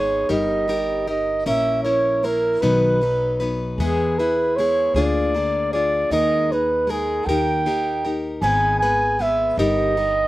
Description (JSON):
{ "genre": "acoustic folk duo or small band", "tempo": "52 BPM (dotted quarters)", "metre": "6/8", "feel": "straight", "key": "unclear", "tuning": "A4 = 440 Hz", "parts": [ { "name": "mellow flugelhorn", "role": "melody", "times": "0.0-10.3 s", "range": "G#4 to G#5", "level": "-20 LUFS", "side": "right 2 dB", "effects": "none" }, { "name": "picked plugged-in steel-string acoustic guitar", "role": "accompaniment", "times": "0.0-10.3 s", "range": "G#2 to B4", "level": "-23 LUFS", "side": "left 2 dB", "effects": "none" }, { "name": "upright bass", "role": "bass", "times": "0.0-10.3 s", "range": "G1 to E2", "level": "-28 LUFS", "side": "equal", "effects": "none" } ], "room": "light reverb", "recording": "recorded outdoors, with no room sound", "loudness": "-18 LUFS", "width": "side -16 dB against mid", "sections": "0.0-10.3 A section", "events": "none", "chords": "0.3 D#/G; 1.5 A#dim; 2.6 B; 3.8 E; 4.9 A#7/D; 6.1 D#sus4; 7.3 D#; 8.4 G#m; 9.6 D#/G", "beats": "0.31 | 1.47 2.63 | 3.79 4.95 | 6.11 7.27 | 8.43 9.60" }